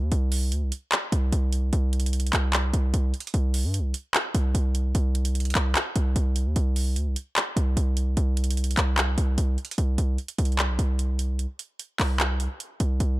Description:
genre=hip hop, trap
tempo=149 BPM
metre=4/4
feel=half-time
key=unclear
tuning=A4 = 440 Hz
part: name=hard-hitting 808-style bass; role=bass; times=0.0-13.2 s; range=B1 to G2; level=-23 LUFS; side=equal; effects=none
part: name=trap drum kit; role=drums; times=0.1-13.1 s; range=handclaps, hi-hat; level=-28 LUFS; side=equal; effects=none
room=little or no reverb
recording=dark, warm production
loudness=-23 LUFS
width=side -18 dB against mid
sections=0.0-9.8 A section; 9.8-13.2 B section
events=none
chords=none

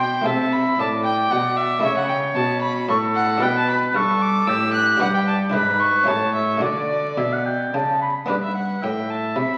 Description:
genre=classical, baroque-style sonata movement with continuo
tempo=113 BPM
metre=3/4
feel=rubato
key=D major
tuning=A4 = 440 Hz
part: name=warm violin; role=melody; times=0.0-9.6 s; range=D5 to F#6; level=-25 LUFS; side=equal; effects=none
part: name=warm oboe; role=second line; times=0.0-9.6 s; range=G4 to B5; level=-25 LUFS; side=equal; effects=none
part: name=buff-stop harpsichord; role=accompaniment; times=0.0-9.6 s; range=G2 to E5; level=-30 LUFS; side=equal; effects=none
part: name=rich cello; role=bass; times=0.0-9.6 s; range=G2 to D3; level=-27 LUFS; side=equal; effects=none
room=wet recital hall reverb, RT60 1.4 s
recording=very old 78 rpm record, vinyl crackle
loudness=-20 LUFS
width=mono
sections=0.0-8.3 A section; 8.3-9.6 A section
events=none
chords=0.0 Am; 1.8 A; 3.4 G; 5.5 E7/G#; 6.1 A7; 6.6 D; 8.3 G

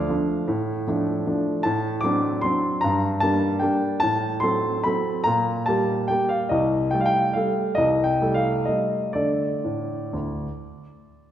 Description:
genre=classical, piano waltz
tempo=120-162 BPM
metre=3/4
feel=rubato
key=G minor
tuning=A4 = 439 Hz
part: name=warm grand piano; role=solo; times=0.0-11.3 s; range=C2 to D6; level=-21 LUFS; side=equal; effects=none
room=wet recital hall reverb, RT60 1.9 s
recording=heard from further back in the room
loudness=-21 LUFS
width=side -10 dB against mid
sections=0.0-11.3 A section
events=none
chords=0.0 Dm; 1.7 D7/A; 2.8 Gm; 4.0 F#dim/A; 5.3 Gm/Bb; 6.5 Am7b5/C; 9.2 D5

